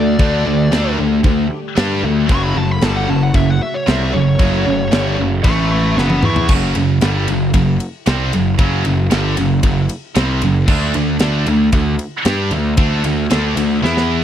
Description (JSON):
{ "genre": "heavy metal", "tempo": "114 BPM", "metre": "4/4", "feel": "straight", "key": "F# phrygian", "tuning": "A4 = 440 Hz", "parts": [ { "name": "high-gain lead guitar", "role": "melody", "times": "0.0-6.5 s", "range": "C#5 to C#6", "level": "-21 LUFS", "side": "left 2 dB", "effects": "distortion, slapback echo" }, { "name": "analog string pad", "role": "sustained chords", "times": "0.0-6.5 s", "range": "C#3 to F#5", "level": "-28 LUFS", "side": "left 1 dB", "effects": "ensemble chorus" }, { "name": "heavy high-gain guitar", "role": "riff", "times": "0.0-14.2 s", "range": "F#2 to G4", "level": "-20 LUFS", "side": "right 1 dB", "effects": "distortion" }, { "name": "high-gain distorted guitar", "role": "riff", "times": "0.0-14.2 s", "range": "F#2 to G4", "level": "-20 LUFS", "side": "equal", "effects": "distortion" }, { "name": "fuzz picked electric bass", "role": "bass", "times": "0.0-14.2 s", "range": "F#1 to G2", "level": "-18 LUFS", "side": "equal", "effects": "overdrive" }, { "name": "tight metal drum kit", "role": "drums", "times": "0.2-14.1 s", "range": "crash cymbal, kick drum, ride cymbal, snare drum, toms", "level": "-17 LUFS", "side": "equal", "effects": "none" } ], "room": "small room ambience", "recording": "dry, close 1970s-style studio recording", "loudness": "-13 LUFS", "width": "side -10 dB against mid", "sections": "0.0-6.5 A section; 6.5-14.2 B section", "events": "lead electric guitar solo 0.0-6.5; drum fill 6.0-6.5, 13.8-14.2", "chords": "0.0 D5; 2.3 F#m; 5.4 A5; 6.0 F#m; 6.5 F#5; 10.7 D5", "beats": "| 0.20 0.73 1.25 1.77 | 2.30 2.82 3.35 3.87 | 4.40 4.92 5.45 5.97 | 6.49 7.02 7.54 8.07 | 8.59 9.12 9.64 10.16 | 10.69 11.21 11.73 12.26 | 12.78 13.31 13.83" }